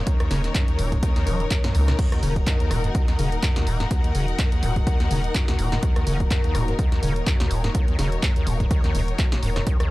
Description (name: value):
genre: acid house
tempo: 125 BPM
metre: 4/4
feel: swing 56% on 16ths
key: Eb minor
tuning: A4 = 441 Hz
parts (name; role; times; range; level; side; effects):
- warm analog pad; sustained chords; 0.0-9.9 s; Eb3 to Ab4; -34 LUFS; equal; chorus, sidechain pumping
- rich studio string section; texture; 0.0-9.9 s; Eb4 to Gb5; -30 LUFS; left 3 dB; sidechain pumping
- acid bass, square; riff; 0.1-9.9 s; Eb1 to Gb3; -27 LUFS; equal; overdrive, analog chorus, vintage 12-bit sampler grit, sidechain pumping, analog delay
- electronic kick drum; drums; 0.1-9.8 s; none; -22 LUFS; equal; none
- punchy analog drum machine; drums; 0.1-9.9 s; crash cymbal, handclaps, hi-hat, rim click, snare drum, toms; -30 LUFS; equal; none
- saturated sub bass; bass; 0.3-9.6 s; Eb1 to Db2; -25 LUFS; equal; sidechain pumping
room: little or no reverb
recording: dry, gritty hardware recording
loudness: -20 LUFS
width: side -19 dB against mid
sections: 0.0-9.9 A section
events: none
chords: 0.0 Ebm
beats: | 0.07 0.55 1.03 1.51 | 1.99 2.47 2.95 3.43 | 3.91 4.39 4.87 5.35 | 5.83 6.31 6.79 7.27 | 7.75 8.23 8.71 9.19 | 9.67